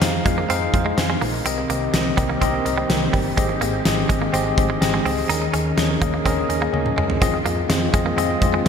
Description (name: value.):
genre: 1980s-style pop.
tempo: 125 BPM.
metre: 4/4.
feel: straight.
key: Ab major.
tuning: A4 = 440 Hz.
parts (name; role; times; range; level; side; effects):
tine electric piano; accompaniment; 0.0-8.7 s; Ab2 to Ab5; -23 LUFS; left 2 dB; medium stereo tremolo.
soft string machine; sustained chords; 0.0-8.7 s; Eb3 to Ab4; -28 LUFS; equal; ensemble chorus.
direct-recorded clean electric guitar; riff; 0.0-8.7 s; G3 to Eb4; -27 LUFS; right 5 dB; analog chorus, ping-pong delay.
vintage muted picked electric bass; bass; 0.0-8.7 s; G1 to F2; -27 LUFS; equal; none.
big rock drum kit; drums; 0.0-8.7 s; hi-hat, kick drum, snare drum, toms; -22 LUFS; equal; gated reverb.
room: wet lush hall reverb, RT60 2.2 s.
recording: bright 1980s-style digital production.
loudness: -18 LUFS.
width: side -7 dB against mid.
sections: 0.0-8.7 A section.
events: drum fill 6.7-7.2.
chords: 0.0 Fm7; 1.5 Cm7; 3.4 Abmaj7; 5.3 Eb7sus4; 7.2 Fm7.